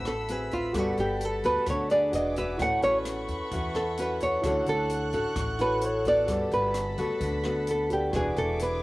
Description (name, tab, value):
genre	bossa nova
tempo	130 BPM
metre	4/4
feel	straight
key	unclear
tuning	A4 = 440 Hz
part	nylon-string guitar	accompaniment	0.0-8.8 s	A2 to B4	-32 LUFS	left 2 dB	cassette tape
part	warm concert grand piano	accompaniment	0.0-8.8 s	E4 to E5	-36 LUFS	right 2 dB	cassette tape
part	warm chamber violin section	sustained chords	0.0-8.8 s	G#4 to F#6	-37 LUFS	equal	cassette tape
part	upright bass	bass	0.0-8.8 s	E1 to E2	-35 LUFS	equal	none
part	nylon-string guitar	melody	0.1-8.8 s	F4 to F#5	-27 LUFS	right 1 dB	cassette tape
part	open jazz drum kit	drums	0.1-8.7 s	hi-hat, kick drum, rim click	-38 LUFS	equal	cassette tape
room	light reverb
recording	home recording on cassette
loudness	-25 LUFS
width	side -19 dB against mid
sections	0.0-8.8 A section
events	nylon-string guitar solo 0.0-8.8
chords	0.0 D13 (rootless); 0.8 Gmaj9; 2.1 E9; 2.6 A69; 4.4 Dmaj7; 6.3 Gmaj9; 8.1 E9